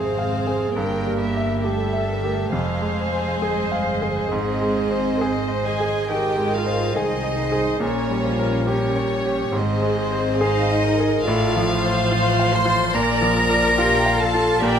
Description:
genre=classical, romantic movement for piano and orchestra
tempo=69 BPM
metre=4/4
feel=rubato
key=unclear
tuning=A4 = 440 Hz
part: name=bright concert grand piano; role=melody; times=0.0-14.8 s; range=F2 to F5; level=-23 LUFS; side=equal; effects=none
part: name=warm chamber violin section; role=melody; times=0.0-14.8 s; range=Bb4 to G5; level=-32 LUFS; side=left 4 dB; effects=none
part: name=warm chamber violin section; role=second line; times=0.0-14.8 s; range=Ab4 to C6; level=-27 LUFS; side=left 2 dB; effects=none
part: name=warm chamber viola section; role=accompaniment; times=0.0-14.8 s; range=F4 to D5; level=-27 LUFS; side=right 1 dB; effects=none
part: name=dark chamber cello section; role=bass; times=0.0-14.8 s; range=Ab3 to C5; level=-25 LUFS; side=right 1 dB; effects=none
part: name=warm chamber double bass section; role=bass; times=0.0-14.8 s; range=F1 to C2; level=-27 LUFS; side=right 3 dB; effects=none
room=moderate scoring stage reverb, RT60 2.0 s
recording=none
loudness=-18 LUFS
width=side -8 dB against mid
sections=0.0-14.8 A section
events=none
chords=0.0 Fm; 0.8 Edim/G; 2.5 Fm; 4.3 Ab; 7.8 Gdim/Bb; 9.5 Ab; 11.3 F/A; 12.9 Bb

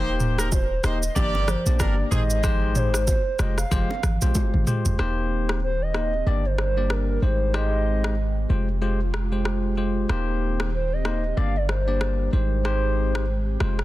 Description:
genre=afrobeats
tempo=94 BPM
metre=4/4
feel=swing 58% on 16ths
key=unclear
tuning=A4 = 441 Hz
part: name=warm horn section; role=second line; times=0.0-2.2 s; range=C4 to D5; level=-31 LUFS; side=right 3 dB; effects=tape echo
part: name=barky tine electric piano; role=accompaniment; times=0.0-13.8 s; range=Ab3 to D5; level=-29 LUFS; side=left 4 dB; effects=none
part: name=warm 808-style bass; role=bass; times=0.0-13.8 s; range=Eb1 to Bb1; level=-24 LUFS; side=equal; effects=none
part: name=afro-pop drum kit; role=drums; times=0.2-13.8 s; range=kick drum, rim click, shaker, toms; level=-27 LUFS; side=equal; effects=soft clipping on snare
part: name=hollow clarinet-like synth lead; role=melody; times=0.5-13.8 s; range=Bb4 to F5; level=-29 LUFS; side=right 1 dB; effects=chorus, tape echo
part: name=bongos and congas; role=percussion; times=0.5-4.5 s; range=none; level=-34 LUFS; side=right 2 dB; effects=none
part: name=airy breathy pad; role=sustained chords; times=5.0-13.8 s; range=Eb3 to Bb4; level=-34 LUFS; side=right 2 dB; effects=chorus
room=little or no reverb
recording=dense, heavily limited modern master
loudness=-21 LUFS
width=side -16 dB against mid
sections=0.0-5.0 A section; 5.0-13.8 B section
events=drum fill 4.4-5.0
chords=0.0 Eb6; 1.2 Gm; 2.1 Abmaj7; 3.4 Fmadd9; 5.0 Eb6; 6.3 Gm; 7.2 Abmaj7; 8.5 Fmadd9; 10.1 Eb6; 11.4 Gm; 12.3 Abmaj7

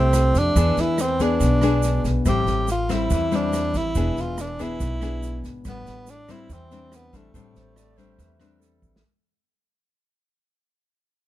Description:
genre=bossa nova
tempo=142 BPM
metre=4/4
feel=straight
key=A minor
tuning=A4 = 440 Hz
part: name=breathy tenor saxophone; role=melody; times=0.0-8.8 s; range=A3 to G4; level=-24 LUFS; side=right 1 dB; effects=none
part: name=nylon-string guitar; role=accompaniment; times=0.0-9.0 s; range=A2 to G#4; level=-25 LUFS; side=left 4 dB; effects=none
part: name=upright bass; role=bass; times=0.0-9.0 s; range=E1 to F2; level=-24 LUFS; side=equal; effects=none
part: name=open jazz drum kit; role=drums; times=0.1-9.1 s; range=kick drum, rim click, snare drum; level=-30 LUFS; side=right 1 dB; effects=none
part: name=egg shaker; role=percussion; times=0.1-9.0 s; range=none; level=-39 LUFS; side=right 8 dB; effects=none
part: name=breathy mellow silver concert flute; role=second line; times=7.5-9.0 s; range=A4 to D5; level=-65 LUFS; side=right 4 dB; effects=none
room=little or no reverb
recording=close, detailed microphones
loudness=-19 LUFS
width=side -14 dB against mid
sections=0.0-9.0 A section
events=fade-out 0.0-9.0; drum fill 8.8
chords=0.0 Fmaj9; 0.6 E7; 2.3 Am7; 4.0 E7; 5.7 Am11

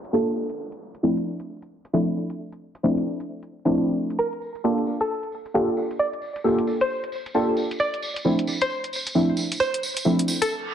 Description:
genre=UK garage, two-step garage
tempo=133 BPM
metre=4/4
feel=swing 62% on 16ths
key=unclear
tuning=A4 = 440 Hz
part: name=electronic hi-hat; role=drums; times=0.0-10.5 s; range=none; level=-32 LUFS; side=equal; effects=none
part: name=downlifter and reverse cymbal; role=sound effects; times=0.0-0.6, 10.6-10.7 s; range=none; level=-40 LUFS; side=right 2 dB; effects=none
part: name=deep mellow chord stab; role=stabs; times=0.1-10.2 s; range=F3 to A4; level=-22 LUFS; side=equal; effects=chorus, digital delay
part: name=string-like resonator pluck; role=melody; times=4.2-10.5 s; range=A4 to D5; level=-25 LUFS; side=equal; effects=chorus, cassette tape, tape echo
part: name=tambourine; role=percussion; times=4.2-10.5 s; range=none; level=-33 LUFS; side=right 2 dB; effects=none
room=wet plate reverb, RT60 1.0 s, digital ambience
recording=heavily compressed radio sound, vinyl crackle, low-pass filter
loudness=-22 LUFS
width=side -9 dB against mid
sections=0.0-10.7 A section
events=filter sweep 0.0-10.7; break 10.5; reverse cymbal 10.6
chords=0.4 Dm9; 4.2 Gm9; 7.6 Dm9

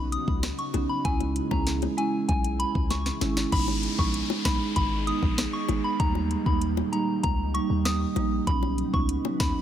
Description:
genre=dancehall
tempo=97 BPM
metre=4/4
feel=straight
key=G# minor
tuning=A4 = 440 Hz
part: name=glassy FM pad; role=sustained chords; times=0.0-9.6 s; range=A#2 to G#4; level=-36 LUFS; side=left 4 dB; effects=ensemble chorus, built-in reverb, sidechain pumping
part: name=warm 808-style bass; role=bass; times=0.0-9.5 s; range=G#1 to D#2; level=-30 LUFS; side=left 1 dB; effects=none
part: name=soft synth bell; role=melody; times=0.1-9.5 s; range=G#5 to D#6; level=-32 LUFS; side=left 2 dB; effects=chorus, digital delay
part: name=afro-pop drum kit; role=drums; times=0.1-9.5 s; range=crash cymbal, hi-hat, kick drum, rim click, snare drum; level=-28 LUFS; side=left 1 dB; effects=none
part: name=bongos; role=percussion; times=0.4-9.4 s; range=none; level=-33 LUFS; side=left 17 dB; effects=none
part: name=marimba with medium mallets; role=accompaniment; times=0.7-9.5 s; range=G3 to E4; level=-29 LUFS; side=right 5 dB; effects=none
part: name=downlifter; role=sound effects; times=3.5-8.5 s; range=none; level=-36 LUFS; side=left 2 dB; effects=none
room=digital ambience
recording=none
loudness=-24 LUFS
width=side -10 dB against mid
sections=0.0-3.5 A section; 3.5-9.6 B section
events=drum fill 2.9-3.5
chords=0.0 Badd9; 1.0 C#m; 3.5 G#m; 6.0 D#; 8.5 Badd9

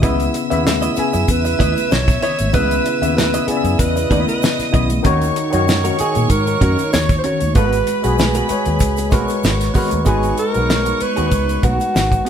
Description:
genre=lush 1970s-style soul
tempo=96 BPM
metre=4/4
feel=swing 54% on 16ths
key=G# minor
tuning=A4 = 440 Hz
part: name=clear studio violin section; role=second line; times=0.0-12.2 s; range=B4 to E6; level=-25 LUFS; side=right 2 dB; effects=none
part: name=tine electric piano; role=accompaniment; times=0.0-12.3 s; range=C#3 to E5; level=-21 LUFS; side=left 3 dB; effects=medium stereo tremolo
part: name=clean electric guitar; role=riff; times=0.0-12.3 s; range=B3 to E5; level=-25 LUFS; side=right 3 dB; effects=none
part: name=vintage muted fingered electric bass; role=bass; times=0.0-12.2 s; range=G#1 to A#2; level=-20 LUFS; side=equal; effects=none
part: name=damped 70s drum kit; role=drums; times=0.0-12.3 s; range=hi-hat, kick drum, snare drum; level=-18 LUFS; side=equal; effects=none
part: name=congas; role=percussion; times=0.0-12.3 s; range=none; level=-30 LUFS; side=right 2 dB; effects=none
part: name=tube shaker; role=percussion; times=0.0-12.3 s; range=none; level=-35 LUFS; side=right 5 dB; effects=none
part: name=breathy alto saxophone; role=melody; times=1.0-12.3 s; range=F#4 to C#5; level=-21 LUFS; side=right 2 dB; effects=none
room=moderate studio reverb, RT60 0.6 s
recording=band playing live in one room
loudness=-14 LUFS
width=side -8 dB against mid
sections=0.0-10.1 A section; 10.1-12.3 B section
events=none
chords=0.0 C#m9; 5.1 D#m7; 7.6 G#m9

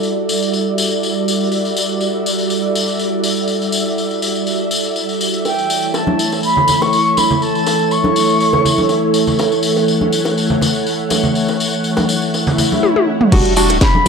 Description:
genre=deep house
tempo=122 BPM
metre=4/4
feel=swing 53% on 16ths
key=E dorian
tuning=A4 = 440 Hz
part: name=soft string machine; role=sustained chords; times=0.0-14.1 s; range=E3 to F#5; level=-18 LUFS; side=equal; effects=ensemble chorus, sidechain pumping
part: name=tambourine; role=percussion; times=0.0-14.1 s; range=none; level=-21 LUFS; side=left 5 dB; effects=none
part: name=warbly tape-like pad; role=texture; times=0.0-12.8 s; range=E4 to D5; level=-21 LUFS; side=right 5 dB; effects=chorus, built-in reverb, sidechain pumping
part: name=mellow concert flute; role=melody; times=5.5-9.1, 13.8-14.1 s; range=G5 to C#6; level=-16 LUFS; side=left 1 dB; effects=tape echo
part: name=bongos and congas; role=percussion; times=5.5-14.0 s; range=none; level=-20 LUFS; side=right 1 dB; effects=none
part: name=swell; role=sound effects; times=12.5-13.3 s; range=none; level=-21 LUFS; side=equal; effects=none
part: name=house drum kit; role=drums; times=12.8-14.1 s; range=crash cymbal, hi-hat, snare drum, toms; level=-16 LUFS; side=left 2 dB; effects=none
part: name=percussive organ stab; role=stabs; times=13.3-13.8 s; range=G3 to F#4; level=-15 LUFS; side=right 1 dB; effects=analog chorus, sidechain pumping, analog delay
part: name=hollow knocking FM bass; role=bass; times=13.3-14.1 s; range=D1 to E1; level=-18 LUFS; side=equal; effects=sidechain pumping
part: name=electronic kick drum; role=drums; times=13.3-13.9 s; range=none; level=-14 LUFS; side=equal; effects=overdrive
room=moderate plate reverb, RT60 1.7 s, digital ambience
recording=dry, gritty hardware recording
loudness=-13 LUFS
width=side -5 dB against mid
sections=0.0-13.3 A section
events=filter sweep on string machine 0.0-13.3; swell 12.5-13.3; drum fill 12.8-13.3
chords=0.0 Em9; 5.5 A/E; 13.3 Em9

